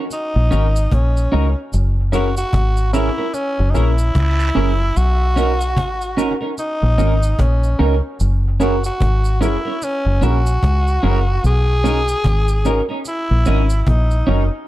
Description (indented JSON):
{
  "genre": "lovers rock reggae",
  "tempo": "74 BPM",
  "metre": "4/4",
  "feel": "swing 59% on 16ths",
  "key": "B major",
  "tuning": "A4 = 440 Hz",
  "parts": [
    { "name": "twelve-string electric guitar", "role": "stabs", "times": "0.0-14.4 s", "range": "C#4 to A#4", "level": "-22 LUFS", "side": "right 4 dB", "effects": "lush chorus" },
    { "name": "growling tenor saxophone", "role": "melody", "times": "0.1-14.5 s", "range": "C#4 to G#4", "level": "-22 LUFS", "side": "equal", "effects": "tape echo" },
    { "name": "cajon", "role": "drums", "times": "0.1-14.2 s", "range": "none", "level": "-23 LUFS", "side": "equal", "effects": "dub echo" },
    { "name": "cabasa and guiro", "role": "percussion", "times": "0.1-14.3 s", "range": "none", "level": "-33 LUFS", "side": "right 4 dB", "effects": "none" },
    { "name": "deep dub fingered electric bass", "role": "bass", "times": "0.4-14.5 s", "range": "F#1 to C#2", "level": "-16 LUFS", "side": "equal", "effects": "none" },
    { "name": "barky tine electric piano", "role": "accompaniment", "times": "0.5-14.4 s", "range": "C#4 to A#4", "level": "-27 LUFS", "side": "left 2 dB", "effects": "overdrive, wide subtle chorus" }
  ],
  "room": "small room reverb",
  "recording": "dark, warm production",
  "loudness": "-15 LUFS",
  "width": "side -15 dB against mid",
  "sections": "0.0-14.7 A section",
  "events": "none",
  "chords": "0.0 Bmaj9 (rootless); 1.7 F#7; 5.0 Bmaj9; 8.2 F#7; 11.4 Bmaj9",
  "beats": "0.11 0.91 | 1.72 2.53 3.34 4.14 | 4.95 5.76 6.57 7.38 | 8.19 9.00 9.81 10.62 | 11.43 12.24 13.05 13.86"
}